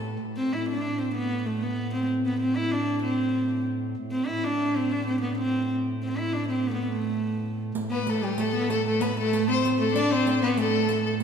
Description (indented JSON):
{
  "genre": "medieval dance",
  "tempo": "127 BPM (dotted quarters)",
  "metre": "6/8",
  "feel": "straight",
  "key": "A minor",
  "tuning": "A4 = 438 Hz",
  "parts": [
    { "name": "chamber organ, principal", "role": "drone", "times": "0.0-11.2 s", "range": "A2", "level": "-32 LUFS", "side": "right 1 dB", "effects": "none" },
    { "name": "warm viola da gamba", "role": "melody", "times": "0.4-11.2 s", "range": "G3 to E4", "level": "-26 LUFS", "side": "right 1 dB", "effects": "none" },
    { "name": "riq", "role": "percussion", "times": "7.8-11.2 s", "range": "none", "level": "-36 LUFS", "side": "right 4 dB", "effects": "none" },
    { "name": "clear violin", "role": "second line", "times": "7.9-11.1 s", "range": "G4 to D5", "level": "-27 LUFS", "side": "left 4 dB", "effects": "none" }
  ],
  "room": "wet church reverb, RT60 3.0 s",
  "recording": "recorded in a church or concert hall",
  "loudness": "-24 LUFS",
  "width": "side -7 dB against mid",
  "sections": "0.2-7.8 A section; 7.8-11.2 B section",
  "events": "none",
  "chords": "none"
}